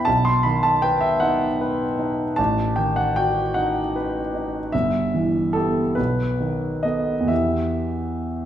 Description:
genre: classical, romantic nocturne for solo piano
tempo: 43-53 BPM (dotted quarters)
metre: 6/8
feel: rubato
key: unclear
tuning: A4 = 439 Hz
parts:
  - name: warm concert grand piano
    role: solo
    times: 0.0-8.5 s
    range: G1 to C6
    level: -19 LUFS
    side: equal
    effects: none
room: wet recital hall reverb, RT60 1.6 s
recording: minimal, uncompressed stereo recording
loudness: -19 LUFS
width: side -10 dB against mid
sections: 0.0-8.5 A section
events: none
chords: 0.1 B; 2.4 B7/A; 4.7 Em/G; 6.0 B7; 7.3 Em

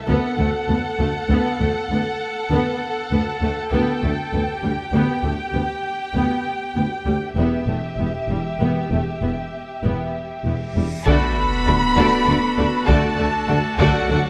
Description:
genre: cinematic, epic orchestral film score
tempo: 66 BPM (dotted quarters)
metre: 12/8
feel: straight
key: unclear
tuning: A4 = 440 Hz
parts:
  - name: warm symphonic violin section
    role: melody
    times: 0.0-14.3 s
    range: E5 to B5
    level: -28 LUFS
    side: equal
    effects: none
  - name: rich symphonic violin section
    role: second line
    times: 0.0-14.2 s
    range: G4 to D5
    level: -30 LUFS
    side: equal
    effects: none
  - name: rich symphonic viola section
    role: accompaniment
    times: 0.1-14.2 s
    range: G3 to F#4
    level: -28 LUFS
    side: equal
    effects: none
  - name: rich symphonic double bass section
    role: bass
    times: 0.1-14.2 s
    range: E1 to D2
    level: -27 LUFS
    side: equal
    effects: none
  - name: warm symphonic cello section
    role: bass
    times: 0.1-14.2 s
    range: D2 to D3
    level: -28 LUFS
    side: equal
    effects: none
  - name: reverse cymbal and sub drop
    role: sound effects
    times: 10.7-14.3 s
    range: none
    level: -31 LUFS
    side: equal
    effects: none
  - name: mellow French horn section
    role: sustained chords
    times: 11.1-14.3 s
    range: F#3 to B3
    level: -28 LUFS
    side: equal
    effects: none
  - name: pipe organ, trumpet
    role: sustained chords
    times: 11.1-14.3 s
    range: D4 to A5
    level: -31 LUFS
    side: equal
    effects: none
  - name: warm tuba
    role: bass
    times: 11.1-14.2 s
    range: D2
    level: -29 LUFS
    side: equal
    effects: none
  - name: taiko ensemble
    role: drums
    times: 11.1-14.3 s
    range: none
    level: -26 LUFS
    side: equal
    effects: none
room: moderate scoring stage reverb, RT60 1.6 s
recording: none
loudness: -21 LUFS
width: mono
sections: 0.0-11.1 A section; 11.1-14.3 B section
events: build-up 0.0-11.1; reverse cymbal 10.7-11.1; impact 11.1-14.3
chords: 0.1 D6; 3.7 G/D; 7.4 Em; 11.1 D

